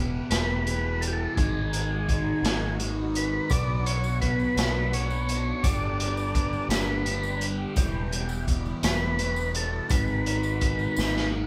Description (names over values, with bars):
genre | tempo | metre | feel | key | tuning
psychedelic rock | 56 BPM (dotted quarters) | 6/8 | straight | unclear | A4 = 440 Hz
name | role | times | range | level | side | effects
rich studio string section | sustained chords | 0.0-11.5 s | F#3 to G4 | -41 LUFS | equal | none
fuzz guitar | riff | 0.0-11.5 s | E2 to B3 | -33 LUFS | equal | distortion, phaser
deep dub picked electric bass | bass | 0.0-11.5 s | E1 to B1 | -32 LUFS | equal | none
combo organ | melody | 0.3-11.3 s | G4 to D5 | -34 LUFS | equal | none
crunchy breakbeat drum kit | drums | 0.3-11.3 s | hi-hat, kick drum, snare drum | -31 LUFS | equal | none
tambourine | percussion | 3.5-11.1 s | none | -47 LUFS | equal | none
room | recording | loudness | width
moderate large studio reverb, RT60 1.2 s | band playing live in one room | -26 LUFS | mono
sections
0.0-11.5 A section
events
drum fill 11.0-11.5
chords
0.0 Em; 1.4 G#m7; 3.5 Bm; 5.6 G; 7.8 Em; 9.9 G#m7